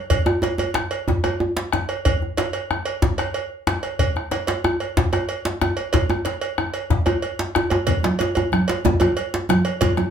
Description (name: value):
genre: west african traditional, West African drum ensemble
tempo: 124 BPM (dotted quarters)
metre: 12/8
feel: straight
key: none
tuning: none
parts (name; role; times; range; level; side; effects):
- bombo; percussion; 0.1-10.1 s; none; -24 LUFS; left 1 dB; none
- cowbell; percussion; 0.1-10.0 s; none; -26 LUFS; right 5 dB; none
- djembe; percussion; 0.1-10.1 s; none; -25 LUFS; left 4 dB; none
- djembe; percussion; 0.3-10.1 s; none; -22 LUFS; right 1 dB; none
- congas; percussion; 7.9-10.1 s; none; -22 LUFS; right 2 dB; none
room: wet small room reverb, RT60 0.5 s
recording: heard from further back in the room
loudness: -19 LUFS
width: side -8 dB against mid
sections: 0.1-10.1 A section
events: none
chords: none